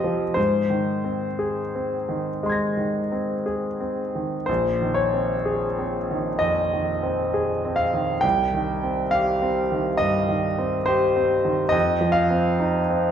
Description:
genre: classical, impressionist solo piano.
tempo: 57-69 BPM.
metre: 4/4.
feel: rubato.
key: Bb dorian.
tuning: A4 = 436 Hz.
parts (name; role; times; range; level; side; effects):
bright concert grand piano; solo; 0.0-13.1 s; Bb1 to Bb6; -21 LUFS; equal; none.
room: wet recital hall reverb, RT60 1.8 s.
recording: dark, warm production.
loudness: -21 LUFS.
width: side -8 dB against mid.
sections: 0.0-13.1 A section.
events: none.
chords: 0.4 Abadd9; 4.5 Bbm11; 8.2 Cm; 11.7 F5.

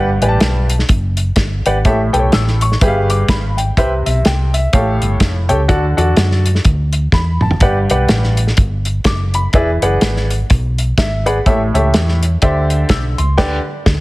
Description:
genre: uptempo gospel.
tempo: 125 BPM.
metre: 4/4.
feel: swing 59% on 8ths.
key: G major.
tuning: A4 = 440 Hz.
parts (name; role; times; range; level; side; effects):
clear baby grand piano; accompaniment; 0.0-13.6 s; G2 to E6; -17 LUFS; equal; none.
hollow-body short-scale fingered electric bass; bass; 0.0-14.0 s; E1 to F#2; -16 LUFS; equal; none.
warm soul drum kit; drums; 0.2-14.0 s; crash cymbal, hi-hat, kick drum, snare drum, toms; -15 LUFS; equal; none.
room: light reverb, small room ambience.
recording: heavily compressed radio sound, multiband compression.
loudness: -12 LUFS.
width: side -20 dB against mid.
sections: 0.0-14.0 A section.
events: drum fill 7.1-7.6; grand piano fill 10.7-11.5; band accent 13.4-14.0.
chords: 0.0 Gmaj7; 1.8 A7; 2.8 G7b9; 3.8 Cmaj7; 4.7 Aaug7; 5.7 D; 7.6 Gmaj7; 9.5 E7; 11.5 A7; 12.4 D9sus4; 13.4 G/D.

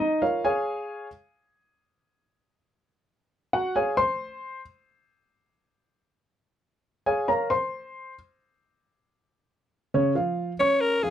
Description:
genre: latin.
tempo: free time.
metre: none.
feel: none.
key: Bb minor.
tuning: A4 = 440 Hz.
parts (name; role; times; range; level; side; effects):
dark concert grand piano; arpeggios; 0.0-11.1 s; Db3 to Db6; -24 LUFS; equal; none.
raspy alto saxophone; melody; 10.6-11.1 s; Ab4 to Db5; -21 LUFS; left 1 dB; none.
room: light reverb.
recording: close, detailed microphones.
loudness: -23 LUFS.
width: side -10 dB against mid.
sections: 0.0-9.9 A section; 9.9-11.1 B section.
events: grand piano solo 0.0-9.9.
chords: 0.0 Bbm7; 1.1 N.C.; 2.9 Ab7/Gb; 4.6 N.C.; 6.4 Bbm7; 8.2 N.C.; 9.9 Db.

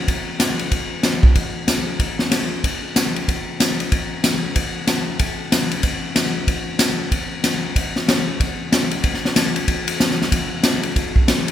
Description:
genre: jazz.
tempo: 187 BPM.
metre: 4/4.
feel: swing 62% on 8ths.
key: none.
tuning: none.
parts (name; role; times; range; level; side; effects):
swinging big-band drum kit; drums; 0.1-11.5 s; hi-hat, kick drum, ride cymbal, snare drum; -17 LUFS; left 1 dB; none.
room: little or no reverb.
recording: none.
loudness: -17 LUFS.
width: side -11 dB against mid.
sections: 0.1-11.5 A section.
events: none.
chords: none.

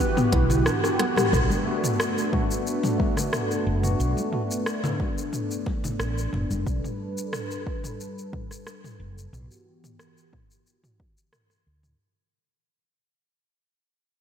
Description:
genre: organic downtempo.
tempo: 90 BPM.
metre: 4/4.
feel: straight.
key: B minor.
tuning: A4 = 440 Hz.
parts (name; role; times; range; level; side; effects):
bright reedy Native American-style cedar flute; melody; 0.0-0.7 s; B4; -36 LUFS; equal; tape echo.
warm analog pad; sustained chords; 0.0-12.0 s; E3 to B4; -30 LUFS; equal; chorus, sidechain pumping.
mallet-like synth pluck; arpeggios; 0.0-1.3 s; B3 to G4; -28 LUFS; left 1 dB; chorus, phaser, analog delay.
organic electronic drum kit; drums; 0.0-12.0 s; hi-hat, rim click, shaker, toms; -29 LUFS; equal; overdrive.
mellow fretless electric bass; bass; 0.3-11.9 s; F#1 to D2; -26 LUFS; equal; sidechain pumping.
electronic kick drum; drums; 0.3-11.1 s; none; -28 LUFS; equal; overdrive.
congas; percussion; 0.3-6.6 s; none; -33 LUFS; left 3 dB; none.
tine electric piano; accompaniment; 1.6-5.1 s; A3 to F#4; -32 LUFS; left 1 dB; fast stereo tremolo, sidechain pumping, analog delay.
room: moderate lush hall reverb, RT60 2.5 s.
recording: dreamy mix soaked in reverb.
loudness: -23 LUFS.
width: side -8 dB against mid.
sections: 0.0-1.3 A section; 1.3-12.0 B section.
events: drum fill 0.8-1.3; band accent 1.2-1.5; fade-out 1.3-12.0; filter sweep on analog synth pad 1.3-12.0.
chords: 0.0 Em7/B; 1.3 Bm7; 6.7 Gadd9/B; 9.3 Em/B.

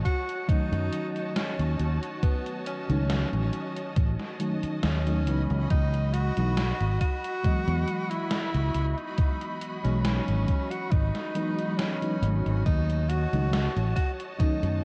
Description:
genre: vaporwave.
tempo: 69 BPM.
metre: 4/4.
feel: swing 54% on 16ths.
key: C# minor.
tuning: A4 = 440 Hz.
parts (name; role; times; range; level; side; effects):
clear studio string section; sustained chords; 0.0-14.8 s; F#4 to B5; -40 LUFS; equal; none.
warm tenor saxophone; melody; 0.1-14.8 s; B3 to F#4; -36 LUFS; equal; tape echo.
electronic kick drum; drums; 0.1-14.6 s; none; -27 LUFS; equal; vintage 12-bit sampler grit.
gated 80s digital drum machine; drums; 0.1-14.8 s; hi-hat, snare drum; -37 LUFS; equal; gated reverb, gated reverb snare, vintage 12-bit sampler grit.
mellow FM electric piano; accompaniment; 0.5-14.8 s; D#3 to D#5; -35 LUFS; equal; tremolo, analog chorus.
fingered electric bass; bass; 0.5-14.8 s; G#1 to F#2; -29 LUFS; equal; none.
room: moderate plate reverb, RT60 2.9 s.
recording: dreamy mix soaked in reverb, cassette tape.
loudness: -27 LUFS.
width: mono.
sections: 0.0-14.8 A section.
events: none.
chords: 0.0 D#m7b5; 5.3 C#m11; 12.7 D#m7b5.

